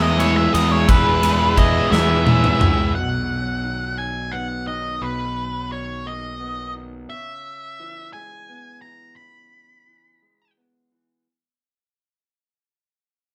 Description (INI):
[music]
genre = post-rock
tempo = 58 BPM (dotted quarters)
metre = 6/8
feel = straight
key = B major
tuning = A4 = 440 Hz
[part]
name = octave-fuzz lead guitar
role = melody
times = 0.0-10.5 s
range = B4 to B5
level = -26 LUFS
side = equal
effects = distortion
[part]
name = pedal steel guitar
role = sustained chords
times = 0.0-2.9 s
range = none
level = barely audible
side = none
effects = none
[part]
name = electric guitar through a small old amp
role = arpeggios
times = 0.0-11.3 s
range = E2 to E4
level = -32 LUFS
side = equal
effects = none
[part]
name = glockenspiel with rubber mallets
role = arpeggios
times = 0.0-2.9 s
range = E6 to G#6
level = -35 LUFS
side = equal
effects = none
[part]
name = distorted electric guitar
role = riff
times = 0.0-2.9 s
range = E3 to E4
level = -29 LUFS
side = equal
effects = distortion
[part]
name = overdriven semi-hollow guitar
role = riff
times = 0.0-2.9 s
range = E3 to G#4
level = -26 LUFS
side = equal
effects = none
[part]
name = fuzz picked electric bass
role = bass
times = 0.0-7.1 s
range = B1 to E2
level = -26 LUFS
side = equal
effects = overdrive
[part]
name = big rock drum kit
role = drums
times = 0.2-2.8 s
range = kick drum, ride cymbal, snare drum, toms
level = -22 LUFS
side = equal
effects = none
[sound]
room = moderate studio reverb, RT60 0.7 s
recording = band playing live in one room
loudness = -19 LUFS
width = mono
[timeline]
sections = 0.0-2.9 A section; 2.9-11.3 B section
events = drum fill 1.9-2.9; fade-out 2.9-11.3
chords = 0.0 E6; 2.9 Bmaj7; 7.1 C#m7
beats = | 0.88 1.91 | 2.95 3.98 | 5.02 6.06 | 7.10 8.14 | 9.18 10.22